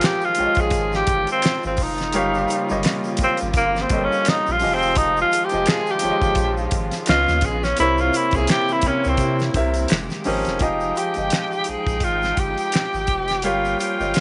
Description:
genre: R&B, neo-soul.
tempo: 85 BPM.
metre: 4/4.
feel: swing 57% on 16ths.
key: F minor.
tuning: A4 = 440 Hz.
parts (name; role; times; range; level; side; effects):
breathy tenor saxophone; melody; 0.0-14.2 s; Bb3 to Ab4; -23 LUFS; equal; none.
warm concert grand piano; accompaniment; 0.0-14.2 s; C3 to G5; -27 LUFS; equal; none.
clear symphonic string section; sustained chords; 0.0-14.2 s; C3 to G5; -33 LUFS; equal; none.
cloth-damped thuddy drum kit; drums; 0.0-14.2 s; finger snaps, hi-hat, kick drum, snare drum; -26 LUFS; equal; none.
finger snaps and egg shaker; percussion; 0.0-14.2 s; none; -38 LUFS; equal; none.
round analog bass; bass; 0.4-14.1 s; F1 to C3; -29 LUFS; equal; none.
room: light reverb, small room ambience.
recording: nothing above 10.8 kHz.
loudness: -20 LUFS.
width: mono.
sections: 0.0-10.6 A section; 10.6-14.2 B section.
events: tenor saxophone solo 0.0-10.6.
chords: 0.0 Fm9; 2.1 Gm7b5; 4.6 Fm9; 7.1 Db9; 7.8 C7b9; 9.9 Fm11; 10.6 Fm9; 13.4 Gm7b5.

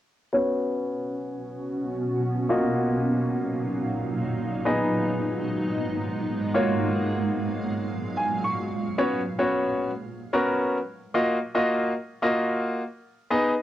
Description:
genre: pop.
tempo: 111 BPM.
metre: 4/4.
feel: straight.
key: unclear.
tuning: A4 = 440 Hz.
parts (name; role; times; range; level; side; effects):
clear baby grand piano; accompaniment; 0.3-13.5 s; A#3 to C#6; -25 LUFS; left 1 dB; low-pass filter, cassette tape.
granular cloud pad; sustained chords; 1.1-9.0 s; G#2 to E#5; -27 LUFS; right 1 dB; built-in reverb, low-pass filter, cassette tape.
room: moderate spring reverb, RT60 1.1 s.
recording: home recording on cassette.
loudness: -24 LUFS.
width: side -13 dB against mid.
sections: 0.3-9.0 A section; 9.0-13.6 B section.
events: filter sweep 0.3-9.0; grand piano fill 7.9-9.0.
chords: 0.3 Bsus2; 2.5 D#madd9/A#; 4.7 G#m; 6.5 F#maj7/A#; 9.0 Bsus2; 11.1 D#madd9/A#.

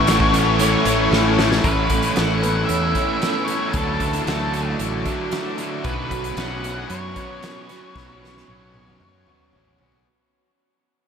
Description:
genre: rock, shoegaze and dream pop.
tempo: 114 BPM.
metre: 4/4.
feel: straight.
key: unclear.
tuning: A4 = 440 Hz.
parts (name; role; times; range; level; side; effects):
octave-fuzz lead guitar; melody; 0.0-9.5 s; A4 to F#5; -26 LUFS; left 1 dB; distortion, ping-pong delay.
warbly tape-like pad; sustained chords; 0.0-10.0 s; F#4 to D6; -29 LUFS; right 2 dB; chorus, built-in reverb, phaser.
fingerpicked twelve-string acoustic guitar; arpeggios; 0.0-10.1 s; E3 to A4; -31 LUFS; left 4 dB; analog chorus, ping-pong delay.
distorted electric guitar; riff; 0.0-1.6 s; A2 to E4; -27 LUFS; left 1 dB; overdrive.
overdriven electric guitar; riff; 0.0-10.1 s; A2 to A4; -27 LUFS; left 8 dB; wide subtle chorus.
overdriven semi-hollow guitar; riff; 0.0-10.1 s; A2 to E4; -26 LUFS; right 5 dB; reverse reverb.
fuzz fingered electric bass; bass; 0.0-10.0 s; A1 to F#2; -24 LUFS; equal; overdrive.
loose indie drum kit; drums; 0.1-10.1 s; hi-hat, kick drum, snare drum, toms; -25 LUFS; equal; none.
room: wet huge ambient reverb, RT60 8.3 s.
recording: dreamy mix soaked in reverb.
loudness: -18 LUFS.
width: side -7 dB against mid.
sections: 0.0-1.6 A section; 1.6-10.1 B section.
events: drum fill 1.1-1.6, 8.0-10.1; fade-out 1.6-10.1.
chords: 0.0 A; 1.6 Aadd9; 3.7 Dadd9; 5.9 Bsus2.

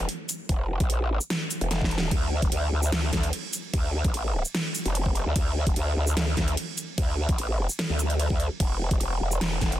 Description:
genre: heavy wobble dubstep.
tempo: 148 BPM.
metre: 4/4.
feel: half-time.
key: unclear.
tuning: A4 = 444 Hz.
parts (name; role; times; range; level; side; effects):
growl bass; bass; 0.0-9.8 s; E1 to D2; -26 LUFS; equal; chorus, overdrive.
dubstep drum kit; drums; 0.1-9.8 s; crash cymbal, hi-hat, shaker, snare drum; -30 LUFS; right 1 dB; overdrive.
electronic kick drum; drums; 0.5-9.7 s; none; -26 LUFS; equal; overdrive.
room: little or no reverb.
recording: dense, heavily limited modern master.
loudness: -24 LUFS.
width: side -13 dB against mid.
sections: 0.0-9.8 A section.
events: drum fill 1.7-2.1.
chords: none.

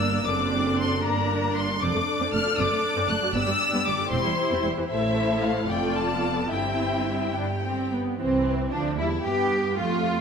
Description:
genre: quick classical-period movement for string orchestra.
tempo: 71-80 BPM (dotted quarters).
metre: 6/8.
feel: rubato.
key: C major.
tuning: A4 = 441 Hz.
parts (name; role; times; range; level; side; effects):
rich chamber violin section; melody; 0.0-10.2 s; C4 to F#6; -28 LUFS; left 4 dB; none.
rich chamber violin section; second line; 0.0-10.2 s; C4 to G5; -30 LUFS; left 4 dB; none.
rich studio viola section; accompaniment; 0.0-10.2 s; D3 to F4; -28 LUFS; right 2 dB; none.
rich studio double bass section; bass; 0.0-10.2 s; E1 to G2; -32 LUFS; right 4 dB; none.
rich symphonic cello section; bass; 0.0-10.2 s; E2 to G4; -30 LUFS; right 3 dB; none.
room: moderate scoring stage reverb, RT60 1.6 s.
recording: none.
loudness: -22 LUFS.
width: side -6 dB against mid.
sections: 0.0-8.2 A section; 8.2-10.2 B section.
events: none.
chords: 0.3 D7/F#; 1.0 Gm; 1.8 Dm/F; 2.6 D/F#; 3.3 G5; 4.1 C/E; 4.9 Am; 5.7 Dm/F; 6.5 C/G; 7.4 G; 8.2 C.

